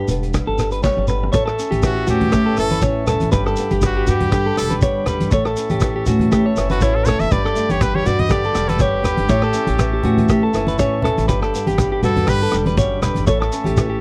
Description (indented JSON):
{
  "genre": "highlife guitar band",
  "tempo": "121 BPM",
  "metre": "4/4",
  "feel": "swing 55% on 16ths",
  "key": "A mixolydian",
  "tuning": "A4 = 441 Hz",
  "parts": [
    { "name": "flamenco guitar", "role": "accompaniment", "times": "0.0-14.0 s", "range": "F#2 to A4", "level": "-27 LUFS", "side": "equal", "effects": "none" },
    { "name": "clean electric guitar", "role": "arpeggios", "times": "0.0-14.0 s", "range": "F#4 to C#5", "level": "-24 LUFS", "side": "equal", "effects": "tape echo" },
    { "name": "upright bass", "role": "bass", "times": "0.0-14.0 s", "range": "E1 to A2", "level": "-24 LUFS", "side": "equal", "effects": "none" },
    { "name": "vintage drum kit", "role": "drums", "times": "0.1-13.9 s", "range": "hi-hat, kick drum, rim click, snare drum, toms", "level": "-25 LUFS", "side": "equal", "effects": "none" },
    { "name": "shekere", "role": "percussion", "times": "0.1-13.9 s", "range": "none", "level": "-27 LUFS", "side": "equal", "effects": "none" },
    { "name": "combo organ", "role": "sustained chords", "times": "1.3-14.0 s", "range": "E5 to D6", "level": "-34 LUFS", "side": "equal", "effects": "none" },
    { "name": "congas", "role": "percussion", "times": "1.7-13.8 s", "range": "none", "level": "-26 LUFS", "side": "equal", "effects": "none" },
    { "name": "brilliant trumpet", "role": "melody", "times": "1.9-12.5 s", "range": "E4 to E5", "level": "-25 LUFS", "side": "equal", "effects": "none" }
  ],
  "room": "studio ambience",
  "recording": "dry, close 1970s-style studio recording",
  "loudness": "-18 LUFS",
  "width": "mono",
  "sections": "0.0-1.3 A section; 1.3-14.0 B section",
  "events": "drum fill 0.8-1.3; trumpet solo 1.3-14.0",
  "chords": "0.0 G; 1.3 A; 3.3 G; 5.3 A; 7.3 G; 9.3 A; 11.3 G; 13.3 A"
}